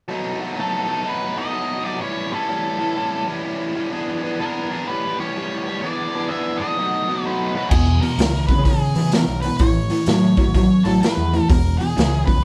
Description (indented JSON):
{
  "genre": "blues rock power trio and southern rock",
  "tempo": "126 BPM",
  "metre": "4/4",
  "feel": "swing 64% on 8ths",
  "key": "unclear",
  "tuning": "A4 = 441 Hz",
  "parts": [
    { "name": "overdriven electric guitar", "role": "riff", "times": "0.1-12.4 s", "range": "E2 to G#4", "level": "-24 LUFS", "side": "equal", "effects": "none" },
    { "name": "octave-fuzz lead guitar", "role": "melody", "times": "0.6-12.4 s", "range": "G#4 to E5", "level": "-28 LUFS", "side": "equal", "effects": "distortion" },
    { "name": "growling picked electric bass", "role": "bass", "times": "7.7-12.4 s", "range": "E1 to E3", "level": "-24 LUFS", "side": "equal", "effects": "overdrive" },
    { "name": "raw garage drum kit", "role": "drums", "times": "7.7-12.4 s", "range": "crash cymbal, hi-hat, kick drum, snare drum", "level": "-22 LUFS", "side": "equal", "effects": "none" }
  ],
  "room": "moderate stone room reverb, RT60 1.0 s",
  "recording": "band playing live in one room",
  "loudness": "-20 LUFS",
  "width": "mono",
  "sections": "0.1-7.7 A section; 7.7-12.4 B section",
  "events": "none",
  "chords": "0.1 B7; 2.0 A7; 3.9 E7; 4.9 A7; 5.8 E7; 6.8 B7; 7.7 E; 9.6 A; 11.5 E"
}